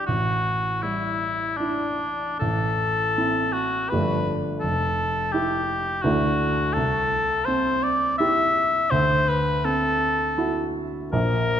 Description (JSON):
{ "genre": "classical, impressionist duo for cor anglais and grand piano", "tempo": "70-86 BPM", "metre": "3/4", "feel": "rubato", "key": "unclear", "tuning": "A4 = 440 Hz", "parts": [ { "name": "warm cor anglais", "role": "melody", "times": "0.0-11.6 s", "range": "D4 to E5", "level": "-23 LUFS", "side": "left 2 dB", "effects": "none" }, { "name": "warm baby grand piano", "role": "accompaniment", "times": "0.0-11.6 s", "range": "F1 to G4", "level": "-25 LUFS", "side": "right 2 dB", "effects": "none" } ], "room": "moderate scoring stage reverb, RT60 1.9 s", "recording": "none", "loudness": "-21 LUFS", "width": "side -9 dB against mid", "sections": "0.0-11.6 A section", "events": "none", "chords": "0.0 A7sus4; 2.4 Am; 3.9 G9; 4.6 Fmaj9; 6.1 Dadd9; 6.8 C6; 8.9 D9", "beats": "| 0.07 0.83 1.60 | 2.43 3.19 3.92 | 4.63 5.35 6.05 | 6.76 7.49 8.21 | 8.93 9.65 10.38 | 11.13" }